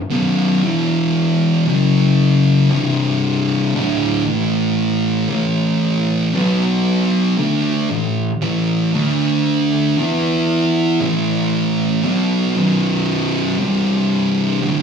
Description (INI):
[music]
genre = metal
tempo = 58 BPM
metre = 4/4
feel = straight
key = unclear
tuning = A4 = 440 Hz
[part]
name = thick fuzz guitar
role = solo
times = 0.1-14.8 s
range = B1 to E4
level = -14 LUFS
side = equal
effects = distortion
[sound]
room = light reverb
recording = live gig heard through the venue's PA, club reverb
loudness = -15 LUFS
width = side -6 dB against mid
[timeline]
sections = 0.0-14.8 A section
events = none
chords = 0.0 B5; 0.6 E5; 1.7 F#5; 2.7 C5; 3.7 D5; 4.3 A5; 6.3 B5; 7.4 A5; 8.9 D5; 10.0 E5; 11.0 A5; 12.6 B5; 13.6 C5